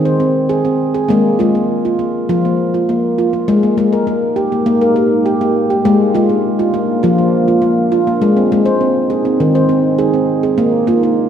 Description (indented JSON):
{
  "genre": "world meditative, meditative tuned percussion",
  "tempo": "101 BPM",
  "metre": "4/4",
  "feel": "straight",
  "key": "Ab lydian",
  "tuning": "A4 = 441 Hz",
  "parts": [
    { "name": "handpan", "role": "arpeggios", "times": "0.0-11.3 s", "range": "Eb3 to C5", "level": "-12 LUFS", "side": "equal", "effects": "none" },
    { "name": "deep dark ambient pad", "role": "sustained chords", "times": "4.3-11.3 s", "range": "F3 to G4", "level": "-18 LUFS", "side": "right 1 dB", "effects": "chorus, built-in reverb" }
  ],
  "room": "wet church reverb, RT60 2.9 s",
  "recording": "none",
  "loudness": "-12 LUFS",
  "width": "side -8 dB against mid",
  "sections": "0.0-11.3 A section",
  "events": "none",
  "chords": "0.0 Ab; 1.1 Bb5/Ab; 3.5 Eb/Ab; 5.8 Bb; 8.2 Ab; 10.6 Bb",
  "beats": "0.50 | 1.10 1.69 2.29 2.88 | 3.47 4.07 4.66 5.25 | 5.84 6.44 7.03 7.62 | 8.21 8.81 9.40 9.99 | 10.58 11.17"
}